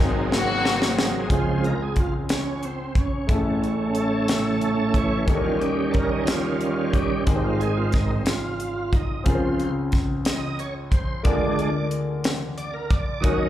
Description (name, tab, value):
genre	slow gospel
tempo	60 BPM (dotted quarters)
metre	6/8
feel	straight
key	Db major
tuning	A4 = 441 Hz
part	rich studio string section	melody	0.0-1.3 s	Bb3 to Gb4	-25 LUFS	left 3 dB	slapback echo
part	clear concert grand piano	accompaniment	0.0-13.5 s	Ab1 to C5	-27 LUFS	left 2 dB	slapback echo
part	bright tonewheel organ	sustained chords	0.0-13.5 s	Ab2 to Eb5	-25 LUFS	right 3 dB	slow rotary speaker, overdrive, chorus vibrato
part	crisp fusion drum kit	drums	0.3-13.4 s	hi-hat, kick drum, snare drum	-23 LUFS	equal	none
room	light reverb, studio reverb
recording	live gig heard through the venue's PA, club reverb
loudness	-21 LUFS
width	side -12 dB against mid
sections	0.0-1.3 A section; 1.3-13.5 B section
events	drum fill 0.3-1.3; tonewheel organ solo 1.3-13.5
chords	0.0 Ab9; 1.3 Dbmaj7; 3.3 Amaj7; 5.3 Eb7; 7.3 Ab; 9.3 Dbmaj7; 11.3 Bb7/D